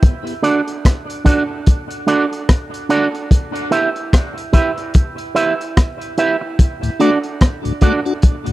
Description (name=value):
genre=dub reggae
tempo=73 BPM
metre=4/4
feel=swing 59% on 16ths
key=unclear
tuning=A4 = 439 Hz
part: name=crunchy breakbeat drum kit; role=drums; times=0.0-8.5 s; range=hi-hat, kick drum, rim click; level=-12 LUFS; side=equal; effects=none
part: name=electric guitar with an envelope filter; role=accompaniment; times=0.4-8.0 s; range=D4 to E5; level=-18 LUFS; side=right 3 dB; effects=spring reverb, dub echo
part: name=tonewheel organ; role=accompaniment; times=6.8-8.5 s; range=D2 to F#4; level=-21 LUFS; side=left 4 dB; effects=stopped rotary speaker, dub echo
room=little or no reverb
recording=dry, close 1970s-style studio recording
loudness=-14 LUFS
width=side -16 dB against mid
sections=0.0-8.5 A section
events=break 0.0-6.6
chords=0.0 D; 3.3 Em; 6.6 D